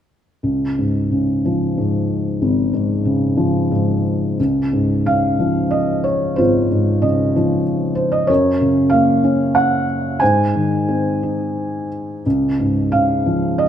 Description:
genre	classical, lyrical solo piano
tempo	86-96 BPM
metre	3/4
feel	rubato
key	Db major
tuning	A4 = 436 Hz
part	felt-muted upright piano	solo	0.4-13.7 s	Ab1 to Ab5	-15 LUFS	equal	none
room	moderate scoring stage reverb, RT60 1.6 s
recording	none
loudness	-15 LUFS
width	side -10 dB against mid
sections	0.4-4.4 A section; 4.4-13.7 B section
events	none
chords	0.4 Db; 8.3 Gbmaj7; 10.2 Ab; 12.3 Db

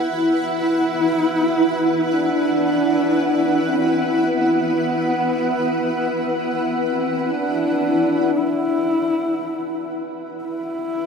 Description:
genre	ambient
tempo	free time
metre	none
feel	none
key	unclear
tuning	A4 = 440 Hz
part	granular cloud pad	sustained chords	0.0-11.1 s	E4 to F#5	-20 LUFS	equal	built-in reverb
part	dark horsehead fiddle	melody	0.1-11.1 s	B3 to E4	-21 LUFS	equal	tape echo
room	wet cathedral reverb, RT60 6.3 s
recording	none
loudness	-18 LUFS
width	side -6 dB against mid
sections	0.0-8.4 A section; 8.4-11.1 B section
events	none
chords	0.0 Esus2

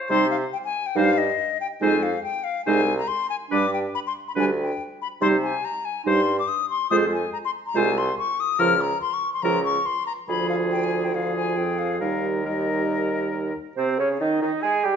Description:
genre	quick classical-period movement for wind quintet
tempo	141 BPM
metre	4/4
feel	straight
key	C minor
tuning	A4 = 440 Hz
part	clear oboe	second line	0.0-15.0 s	C4 to C5	-29 LUFS	left 2 dB	none
part	concert flute	melody	0.1-15.0 s	C5 to F6	-26 LUFS	left 7 dB	none
part	clear clarinet	accompaniment	0.1-15.0 s	D4 to Ab5	-27 LUFS	right 7 dB	none
part	warm French horn	accompaniment	0.1-15.0 s	F3 to Ab4	-28 LUFS	right 1 dB	none
part	clear bassoon	bass	0.1-14.9 s	C2 to Ab3	-27 LUFS	right 3 dB	none
room	wet recital hall reverb, RT60 1.4 s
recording	nothing above 7.7 kHz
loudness	-21 LUFS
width	side -7 dB against mid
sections	0.1-13.8 A section; 13.8-15.0 B section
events	none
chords	0.1 Cm; 1.8 Fm7; 3.5 G; 5.2 Cm; 6.9 Fm; 8.6 Bbm/Db; 10.3 Ddim; 12.0 Eb; 13.8 Cm

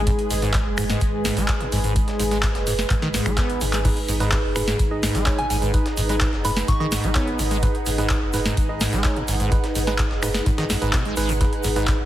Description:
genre	acid house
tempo	127 BPM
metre	4/4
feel	straight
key	G# minor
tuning	A4 = 440 Hz
part	warm analog pad	sustained chords	0.0-12.1 s	G#3 to G#4	-30 LUFS	right 1 dB	chorus, sidechain pumping
part	saturated sub bass	bass	0.0-12.1 s	F#1 to G#1	-27 LUFS	equal	sidechain pumping
part	ethereal airy pad	texture	0.0-12.1 s	D#4 to G#5	-29 LUFS	right 2 dB	ensemble chorus, built-in reverb, phaser, sidechain pumping
part	acid bass, saw	riff	0.1-11.9 s	F#2 to B3	-27 LUFS	equal	tube saturation, wide subtle chorus, sidechain pumping, tape echo
part	booming analog drum machine	drums	0.1-12.0 s	crash cymbal, finger snaps, handclaps, hi-hat, snare drum	-27 LUFS	equal	none
part	breakbeat sampler-style drum kit	drums	0.1-12.0 s	hi-hat, snare drum	-37 LUFS	left 1 dB	none
part	electronic kick drum	drums	0.1-12.0 s	none	-23 LUFS	equal	none
part	egg shaker	percussion	0.1-12.0 s	none	-35 LUFS	right 2 dB	none
part	tine electric piano	stabs	3.8-12.0 s	D#4 to D#5	-30 LUFS	right 3 dB	tape echo
part	soft synth bell	melody	5.4-6.9 s	G#5 to C#6	-29 LUFS	right 1 dB	chorus, tape echo
room	light reverb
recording	heavily compressed radio sound, multiband compression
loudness	-19 LUFS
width	side -13 dB against mid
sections	0.0-12.1 A section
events	drum fill 3.4-3.8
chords	0.0 G#m

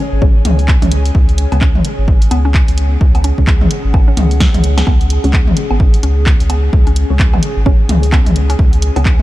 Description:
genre	minimal techno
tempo	129 BPM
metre	4/4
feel	swing 60% on 16ths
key	unclear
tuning	A4 = 442 Hz
part	hollow square pluck	riff	0.0-9.0 s	B3 to C#4	-25 LUFS	equal	chorus, sidechain pumping, analog delay
part	warbly tape-like pad	texture	0.0-9.2 s	C#4 to G#5	-24 LUFS	left 2 dB	chorus, built-in reverb, phaser, sidechain pumping
part	saturated sub bass	bass	0.1-9.2 s	G#1 to C#2	-14 LUFS	equal	sidechain pumping
part	filtered dub chord stab	stabs	0.2-9.0 s	C#4 to C#5	-24 LUFS	left 1 dB	phaser, ensemble chorus, vintage 12-bit sampler grit, ping-pong delay
part	electronic kick drum	drums	0.2-9.2 s	none	-12 LUFS	equal	studio reverb
part	punchy analog drum machine	drums	0.5-9.2 s	handclaps, hi-hat, snare drum	-23 LUFS	equal	studio reverb
part	electronic toms and woodblock	percussion	0.5-9.2 s	none	-20 LUFS	left 1 dB	studio reverb
room	little or no reverb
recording	none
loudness	-9 LUFS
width	side -16 dB against mid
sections	0.0-9.2 A section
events	drum fill 4.4-4.9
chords	0.0 C#5

